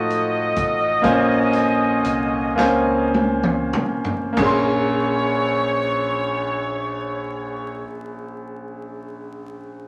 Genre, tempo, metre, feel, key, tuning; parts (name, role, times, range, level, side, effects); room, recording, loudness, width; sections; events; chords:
slow gospel; 30-44 BPM (dotted quarters); 6/8; straight; Bb minor; A4 = 443 Hz
clear saxophone section; melody; 0.0-7.8 s; Gb4 to Eb5; -25 LUFS; equal
clear concert grand piano; accompaniment; 0.0-9.9 s; Bb1 to C6; -23 LUFS; equal
fingered electric bass; bass; 0.0-7.8 s; A1 to A2; -37 LUFS; equal
swinging big-band drum kit; drums; 0.1-4.7 s; crash cymbal, hi-hat, kick drum, snare drum, toms; -28 LUFS; equal
group handclap; percussion; 2.6-5.0 s; -34 LUFS; equal
wet studio reverb, RT60 0.7 s; vinyl crackle; -20 LUFS; mono
0.0-4.4 A section; 4.4-8.3 B section
slowing down 0.0-4.4; drum fill 2.6-4.4
0.0 F7b9; 1.0 Bbm9